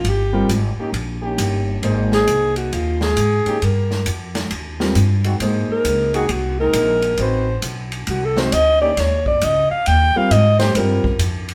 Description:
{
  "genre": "jazz, big band swing",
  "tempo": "134 BPM",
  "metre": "4/4",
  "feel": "swing 65% on 8ths",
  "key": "Eb mixolydian",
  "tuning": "A4 = 442 Hz",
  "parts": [
    { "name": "breathy alto saxophone", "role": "melody", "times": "0.0-11.2 s", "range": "F4 to G5", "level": "-20 LUFS", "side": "equal", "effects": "none" },
    { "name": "mellow trombone section", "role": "sustained chords", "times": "0.0-10.7 s", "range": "Eb3 to G4", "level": "-29 LUFS", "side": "equal", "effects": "none" },
    { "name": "upright bass", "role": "bass", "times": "0.0-11.5 s", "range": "G1 to Ab2", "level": "-22 LUFS", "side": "equal", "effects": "none" },
    { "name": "swinging big-band drum kit", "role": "drums", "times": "0.0-11.5 s", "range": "hi-hat, kick drum, ride cymbal, snare drum", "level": "-29 LUFS", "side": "equal", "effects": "none" },
    { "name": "warm grand piano", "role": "accompaniment", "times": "0.3-11.0 s", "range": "G3 to C5", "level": "-26 LUFS", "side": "equal", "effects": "none" }
  ],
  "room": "wet stone room reverb, RT60 0.9 s",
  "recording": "band playing live in one room",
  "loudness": "-18 LUFS",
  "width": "mono",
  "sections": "0.0-11.5 A section",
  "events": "alto saxophone solo 0.0-11.5",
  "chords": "0.0 Eb7; 1.8 Ab; 3.6 Eb; 5.4 Ab; 7.2 Adim7; 9.0 Eb7; 10.8 Fsus24"
}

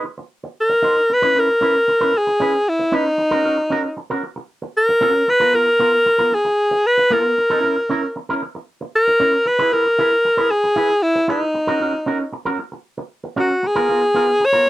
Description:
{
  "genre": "disco",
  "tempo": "115 BPM",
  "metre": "4/4",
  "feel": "straight",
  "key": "C# dorian",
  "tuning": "A4 = 438 Hz",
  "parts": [
    { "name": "electric guitar with an envelope filter", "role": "accompaniment", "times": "0.0-14.7 s", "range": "B3 to B#4", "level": "-23 LUFS", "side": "right 2 dB", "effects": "none" },
    { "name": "bright alto saxophone", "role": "melody", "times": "0.6-14.7 s", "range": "D#4 to C#5", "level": "-15 LUFS", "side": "equal", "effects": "none" }
  ],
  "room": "little or no reverb",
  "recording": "dry, close 1970s-style studio recording",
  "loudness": "-15 LUFS",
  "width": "side -16 dB against mid",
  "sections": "0.0-1.1 A section; 1.1-14.7 B section",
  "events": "none",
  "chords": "0.1 D#m6; 1.1 C#m7; 3.2 D#m7; 5.3 G#m69/B; 7.4 C#m6; 9.5 E(#11); 11.6 D#m7; 13.6 G#m69/B"
}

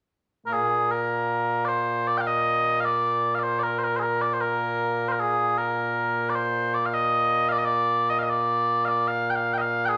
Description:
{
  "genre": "scottish traditional, Scottish pipe music",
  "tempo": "77 BPM",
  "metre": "3/4",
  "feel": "straight",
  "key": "Bb mixolydian",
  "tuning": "A4 = 443 Hz",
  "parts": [
    { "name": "mellow small bagpipes", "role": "solo", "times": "0.5-10.0 s", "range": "Bb2 to G5", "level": "-24 LUFS", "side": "equal", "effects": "none" }
  ],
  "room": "moderate large studio reverb, RT60 1.0 s",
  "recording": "none",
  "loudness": "-24 LUFS",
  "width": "mono",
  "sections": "0.5-10.0 A section",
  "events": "none",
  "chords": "none"
}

